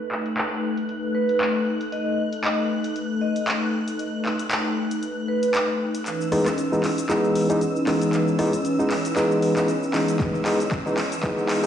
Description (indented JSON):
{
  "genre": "deep house",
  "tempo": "116 BPM",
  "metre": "4/4",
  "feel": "swing 56% on 16ths",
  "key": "C# minor",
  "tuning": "A4 = 439 Hz",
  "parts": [
    { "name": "warm analog pad", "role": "sustained chords", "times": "0.0-11.7 s", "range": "E3 to E6", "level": "-26 LUFS", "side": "left 1 dB", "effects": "chorus, sidechain pumping" },
    { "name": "soft string machine", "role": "texture", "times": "0.0-11.7 s", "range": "E6 to F#6", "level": "-36 LUFS", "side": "equal", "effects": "ensemble chorus, sidechain pumping" },
    { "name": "punchy analog drum machine", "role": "drums", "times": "0.1-11.7 s", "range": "handclaps, hi-hat, rim click, shaker", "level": "-28 LUFS", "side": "equal", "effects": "overdrive" },
    { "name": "vibraphone with medium hard mallets", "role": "melody", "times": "1.1-5.5 s", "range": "B4 to D#5", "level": "-27 LUFS", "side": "right 2 dB", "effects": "analog delay" },
    { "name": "barky tine electric piano", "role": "stabs", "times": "6.3-11.7 s", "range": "E3 to D#4", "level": "-22 LUFS", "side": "equal", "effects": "overdrive, sidechain pumping, low-pass filter, analog delay" },
    { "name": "electronic kick drum", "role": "drums", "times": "10.2-11.3 s", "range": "none", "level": "-27 LUFS", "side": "equal", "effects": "overdrive" }
  ],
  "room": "wet echo chamber reverb, RT60 1.4 s, digital ambience",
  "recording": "played on a big sound system in a bare room, large studio reverb, high-pass filter, low-pass filter, faint mains hum",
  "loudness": "-21 LUFS",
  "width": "side -9 dB against mid",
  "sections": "0.0-6.1 A section; 6.1-11.7 B section",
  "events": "build-up 6.1-11.7; drum fill 6.1-11.7",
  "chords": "0.0 B7; 6.1 C#m9"
}